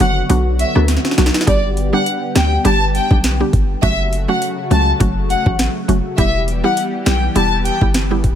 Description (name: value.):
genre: dancehall.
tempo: 102 BPM.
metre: 4/4.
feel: swing 56% on 16ths.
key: B minor.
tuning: A4 = 438 Hz.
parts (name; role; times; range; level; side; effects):
warm studio violin section; melody; 0.0-7.8 s; D5 to A5; -20 LUFS; left 2 dB; ping-pong delay.
mallet-like synth pluck; accompaniment; 0.0-8.3 s; F#3 to G4; -20 LUFS; right 2 dB; chorus.
warm analog pad; sustained chords; 0.0-8.4 s; C#3 to G4; -24 LUFS; left 1 dB; chorus, sidechain pumping.
warm 808-style bass; bass; 0.0-8.4 s; E1 to D2; -17 LUFS; equal; none.
island pop drum kit; drums; 0.0-8.4 s; hi-hat, kick drum, rim click, snare drum; -18 LUFS; equal; overdrive.
room: little or no reverb.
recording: none.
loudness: -13 LUFS.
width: side -9 dB against mid.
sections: 0.0-8.4 A section.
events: break 0.0-1.5; drum fill 0.9-1.5.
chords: 0.0 Bm; 1.5 G; 3.8 F#m; 6.2 Em.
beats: 0.30 0.89 | 1.48 2.06 2.65 3.24 | 3.83 4.42 5.00 5.59 | 6.18 6.77 7.36 7.95.